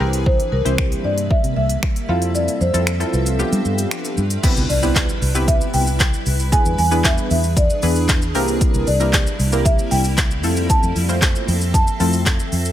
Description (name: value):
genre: dance-pop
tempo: 115 BPM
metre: 4/4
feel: straight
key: C major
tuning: A4 = 442 Hz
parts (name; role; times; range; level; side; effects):
- marimba with medium mallets; melody; 0.0-12.5 s; Bb4 to A5; -23 LUFS; equal; dub echo
- funky polysynth comp; accompaniment; 0.0-12.4 s; A3 to C5; -23 LUFS; equal; chorus, sidechain pumping
- granular cloud pad; sustained chords; 0.0-12.7 s; C3 to E5; -27 LUFS; right 1 dB; built-in reverb, sidechain pumping
- vintage muted fingered electric bass; bass; 0.0-12.7 s; C2 to G3; -20 LUFS; equal; sidechain pumping
- deep house drum kit; drums; 0.1-12.7 s; crash cymbal, finger snaps, handclaps, hi-hat, kick drum, shaker, snare drum; -19 LUFS; equal; none
- impact; sound effects; 4.4-6.5 s; none; -31 LUFS; equal; none
room: digital ambience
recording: none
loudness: -15 LUFS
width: side -12 dB against mid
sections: 0.0-4.4 A section; 4.4-12.7 B section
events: kick muted 2.3-4.4; impact 4.4-6.5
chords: 0.0 C7; 2.1 Fmaj7; 3.4 G7; 4.4 Cmaj7; 6.5 E7; 8.3 C7; 10.4 Fmaj7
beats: | 0.26 0.78 1.31 1.83 | 2.35 2.87 3.39 3.92 | 4.44 4.96 5.48 6.00 | 6.52 7.04 7.57 8.09 | 8.61 9.13 9.65 10.18 | 10.70 11.22 11.74 12.26